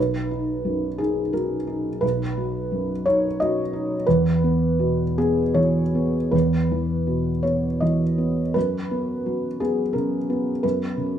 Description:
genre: neoclassical minimalist piano.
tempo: 50-61 BPM (dotted quarters).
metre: 6/8.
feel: rubato.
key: B major.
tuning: A4 = 440 Hz.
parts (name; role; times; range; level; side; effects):
felt-muted upright piano; solo; 0.0-11.2 s; B1 to D#5; -20 LUFS; equal; none.
room: light reverb.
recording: band playing live in one room.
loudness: -20 LUFS.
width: side -9 dB against mid.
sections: 0.0-11.2 A section.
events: none.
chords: 0.0 B; 4.1 E5; 8.6 F#sus4.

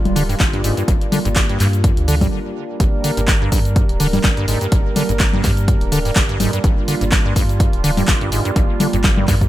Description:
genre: acid house.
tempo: 125 BPM.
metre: 4/4.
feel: swing 55% on 16ths.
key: G minor.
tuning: A4 = 439 Hz.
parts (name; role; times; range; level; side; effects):
warm analog pad; sustained chords; 0.0-9.5 s; G3 to Bb4; -24 LUFS; right 1 dB; chorus, sidechain pumping.
warm sub bass; bass; 0.1-9.5 s; D1 to G2; -22 LUFS; equal; tube saturation, sidechain pumping.
punchy analog drum machine; drums; 0.1-9.5 s; congas, handclaps, hi-hat, shaker; -21 LUFS; equal; none.
acid bass, square; riff; 0.2-9.4 s; G2 to G3; -21 LUFS; equal; analog chorus, ping-pong delay.
electronic kick drum; drums; 0.4-9.5 s; none; -17 LUFS; equal; none.
room: digital ambience.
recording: none.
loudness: -14 LUFS.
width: side -14 dB against mid.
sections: 0.0-2.8 A section; 2.8-9.5 B section.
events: break 2.3-2.8; drop 2.8-9.5.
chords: 0.0 Gm.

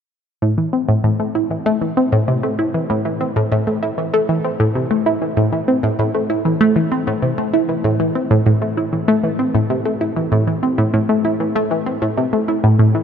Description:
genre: ambient.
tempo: 97 BPM.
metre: 4/4.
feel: straight.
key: A minor.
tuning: A4 = 437 Hz.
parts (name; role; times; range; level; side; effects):
analog pluck; solo; 0.4-13.0 s; A2 to E4; -15 LUFS; equal; chorus, phaser, tape echo.
room: wet huge ambient reverb, RT60 8.3 s.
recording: none.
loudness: -15 LUFS.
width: side -8 dB against mid.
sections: 0.4-13.0 A section.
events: none.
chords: none.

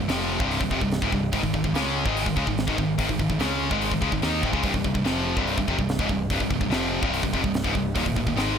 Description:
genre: heavy metal.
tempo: 145 BPM.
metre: 4/4.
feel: straight.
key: C phrygian.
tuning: A4 = 440 Hz.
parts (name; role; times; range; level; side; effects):
high-gain distorted guitar; riff; 0.0-8.6 s; C2 to Eb4; -26 LUFS; left 11 dB; distortion.
scooped high-gain guitar; riff; 0.0-8.6 s; C2 to Eb4; -27 LUFS; right 10 dB; distortion.
growling picked electric bass; bass; 0.0-8.6 s; C1 to Eb2; -31 LUFS; equal; overdrive.
tight metal drum kit; drums; 0.1-8.5 s; hi-hat, kick drum, snare drum; -28 LUFS; equal; none.
room: light reverb.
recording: none.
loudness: -22 LUFS.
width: side -7 dB against mid.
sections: 0.0-8.6 A section.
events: none.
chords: 0.0 C5; 1.3 Ab5; 4.6 C5; 8.0 Eb5.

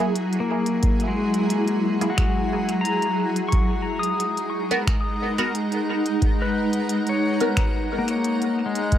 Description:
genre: ambient dub.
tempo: 89 BPM.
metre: 4/4.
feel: straight.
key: G# minor.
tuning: A4 = 440 Hz.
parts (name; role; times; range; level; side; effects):
granular cloud pad; sustained chords; 0.0-9.0 s; F#3 to A#5; -24 LUFS; right 1 dB; built-in reverb.
filtered dub chord stab; stabs; 0.0-8.9 s; A#3 to A#4; -29 LUFS; equal; phaser, analog chorus, dub echo.
organic electronic drum kit; drums; 0.2-9.0 s; finger snaps, hi-hat; -32 LUFS; equal; overdrive, dub echo.
pedal steel guitar; arpeggios; 0.4-9.0 s; G#3 to D#6; -25 LUFS; left 3 dB; tape echo.
electronic kick drum; drums; 0.8-9.0 s; none; -22 LUFS; equal; none.
room: light reverb.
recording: none.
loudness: -20 LUFS.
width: side -11 dB against mid.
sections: 0.0-9.0 A section.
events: none.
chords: 0.0 F#7; 3.5 G#m7.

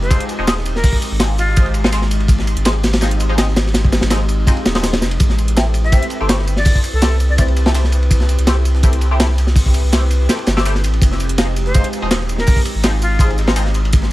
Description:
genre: drum and bass, jungle.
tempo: 165 BPM.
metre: 4/4.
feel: straight.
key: unclear.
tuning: A4 = 440 Hz.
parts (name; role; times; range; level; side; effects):
bright silver concert flute; melody; 0.0-1.7, 5.8-7.4, 11.7-13.3 s; F4 to E5; -24 LUFS; left 1 dB; dub echo.
saturated sub bass; bass; 0.0-14.1 s; Eb1 to C2; -16 LUFS; equal; none.
breakbeat sampler-style drum kit; drums; 0.0-14.1 s; hi-hat, snare drum, tambourine; -29 LUFS; right 2 dB; high-pass filter on snare, high-pass filter on perc, high-pass filter on hats, high-pass filter on room.
band-passed chord stab; stabs; 0.1-13.6 s; F3 to G4; -24 LUFS; left 1 dB; phaser, ensemble chorus, dub echo.
crunchy breakbeat drum kit; drums; 0.1-14.1 s; hi-hat, kick drum, ride cymbal, snare drum; -16 LUFS; equal; none.
room: studio reverb.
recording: none.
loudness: -13 LUFS.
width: side -17 dB against mid.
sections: 0.0-14.1 A section.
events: none.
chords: 0.0 Fm7; 5.2 Am7; 11.0 Fm7.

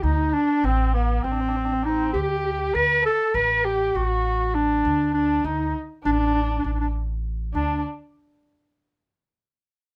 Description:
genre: Turkish makam ensemble.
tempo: 200 BPM (eighths).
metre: 9/8.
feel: straight.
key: D makam hicaz.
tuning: A4 = 440 Hz.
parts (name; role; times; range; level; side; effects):
warm clarinet; melody; 0.0-7.8 s; B3-46c to B4-39c; -25 LUFS; equal; none.
warm kamancheh; second line; 0.0-7.8 s; B3-43c to B4-32c; -31 LUFS; equal; none.
upright bass; bass; 0.0-7.8 s; A1 to D2; -28 LUFS; equal; none.
room: light reverb.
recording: none.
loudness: -23 LUFS.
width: mono.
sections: 0.0-7.5 A section; 7.5-10.0 B section.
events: none.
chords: none.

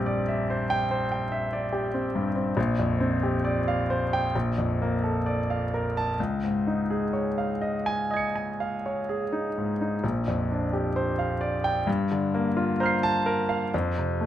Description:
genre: classical, impressionist solo piano.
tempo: 60-73 BPM.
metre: 4/4.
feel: rubato.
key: unclear.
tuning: A4 = 440 Hz.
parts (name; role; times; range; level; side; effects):
clear concert grand piano; solo; 0.0-14.3 s; Bb1 to Db7; -24 LUFS; equal; none.
room: moderate recital hall reverb, RT60 1.4 s.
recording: close, detailed microphones.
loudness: -24 LUFS.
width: side -11 dB against mid.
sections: 0.0-14.3 A section.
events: none.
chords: 0.0 Cadd9/Bb; 2.6 Bb69; 4.3 Bbmaj7; 6.2 Dbadd9; 10.0 Bb69; 11.9 Gm11; 13.7 F5.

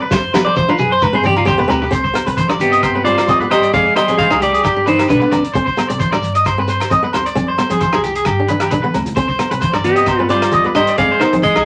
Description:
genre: highlife guitar band.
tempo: 132 BPM.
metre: 4/4.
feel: straight.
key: C harmonic minor.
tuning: A4 = 441 Hz.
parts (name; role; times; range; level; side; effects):
electric guitar at the edge of break-up; arpeggios; 0.0-11.7 s; G4 to Eb5; -20 LUFS; equal; none.
fingerpicked steel-string acoustic guitar; accompaniment; 0.1-11.7 s; B3 to Eb4; -24 LUFS; equal; none.
upright bass; bass; 0.1-11.7 s; C2 to F3; -28 LUFS; equal; none.
warm soul drum kit; drums; 0.1-11.7 s; hi-hat, kick drum, rim click, snare drum, toms; -25 LUFS; equal; none.
congas; percussion; 0.1-11.5 s; none; -28 LUFS; equal; none.
shekere; percussion; 0.1-11.5 s; none; -32 LUFS; equal; none.
agogo bells; percussion; 0.3-11.7 s; none; -28 LUFS; equal; none.
clean electric guitar; melody; 0.4-5.4, 9.8-11.7 s; B3 to F5; -16 LUFS; equal; none.
warm tenor saxophone; second line; 2.6-5.4, 9.9-11.7 s; C3 to Ab3; -28 LUFS; equal; none.
room: wet small room reverb, RT60 0.5 s.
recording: vinyl crackle.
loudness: -15 LUFS.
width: mono.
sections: 0.0-1.9 A section; 1.9-11.7 B section.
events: clean electric guitar solo 0.0-1.9; drum fill 0.1-1.9, 8.6-9.2.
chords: 0.1 F5; 1.0 G; 1.9 Cmadd9; 3.7 Fm; 4.6 G; 5.5 Cmadd9; 7.4 Fm; 8.3 G; 9.2 Cmadd9; 11.0 Fm.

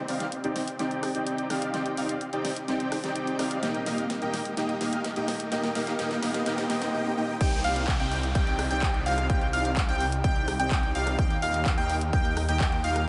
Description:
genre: EDM, festival progressive house.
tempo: 127 BPM.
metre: 4/4.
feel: straight.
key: C minor.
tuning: A4 = 442 Hz.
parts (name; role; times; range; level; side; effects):
dense compressed supersaw; riff; 0.0-13.0 s; Bb3 to G5; -32 LUFS; equal; sidechain pumping, low-pass filter, tape echo.
riser and downlifter; sound effects; 0.0-11.2 s; none; -42 LUFS; equal; none.
big-room dance drum kit; drums; 0.1-13.1 s; crash cymbal, handclaps, hi-hat, rim click, snare drum; -38 LUFS; equal; high-pass filter on hats, high-pass filter on snare, high-pass filter on cymbals.
plucky unison lead; arpeggios; 7.4-13.0 s; F5 to G5; -32 LUFS; equal; sidechain pumping, tape echo.
detuned saw bass; bass; 7.4-13.1 s; C2 to Eb2; -33 LUFS; equal; chorus, sidechain pumping.
electronic kick drum; drums; 7.4-12.7 s; none; -29 LUFS; equal; none.
room: wet church reverb, RT60 3.6 s.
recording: dreamy mix soaked in reverb, nothing above 10.8 kHz.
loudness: -27 LUFS.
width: mono.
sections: 0.0-7.4 A section; 7.4-13.1 B section.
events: build-up 0.0-7.4; drum fill 0.0-6.9; drop 7.4-13.1.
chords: 0.0 Cmadd9; 3.6 Eb; 7.4 Cmadd9; 11.2 Eb.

